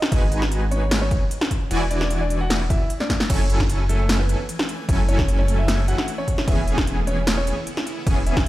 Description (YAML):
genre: future bass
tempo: 151 BPM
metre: 4/4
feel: half-time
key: F# minor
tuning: A4 = 440 Hz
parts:
  - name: big-room dance drum kit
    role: drums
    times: 0.0-8.5 s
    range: crash cymbal, hi-hat, snare drum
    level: -25 LUFS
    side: equal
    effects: none
  - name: clear concert grand piano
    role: melody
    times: 0.1-8.5 s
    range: A3 to F#5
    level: -30 LUFS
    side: equal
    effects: sidechain pumping, dub echo
  - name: supersaw stab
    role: riff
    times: 0.1-8.5 s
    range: E3 to G#5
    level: -28 LUFS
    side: right 1 dB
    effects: sidechain pumping
  - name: saturated sub bass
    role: bass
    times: 0.1-8.5 s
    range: E1 to G#1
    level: -22 LUFS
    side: equal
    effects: sidechain pumping
  - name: electronic kick drum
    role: drums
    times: 0.1-8.4 s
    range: none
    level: -21 LUFS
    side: equal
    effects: none
  - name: shimmering ambient pad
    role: sustained chords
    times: 4.3-8.5 s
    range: C#3 to G#5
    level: -33 LUFS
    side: right 1 dB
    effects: chorus, built-in reverb, phaser, sidechain pumping
room: little or no reverb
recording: played on a big sound system in a bare room, stone room reverb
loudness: -19 LUFS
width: side -16 dB against mid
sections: 0.0-3.3 A section; 3.3-8.5 A section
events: drop 0.0-3.3, 3.3-8.5; drum fill 3.0; band accent 3.2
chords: 0.1 G#m7; 1.7 E7; 3.3 F#m9; 6.3 C#m7/E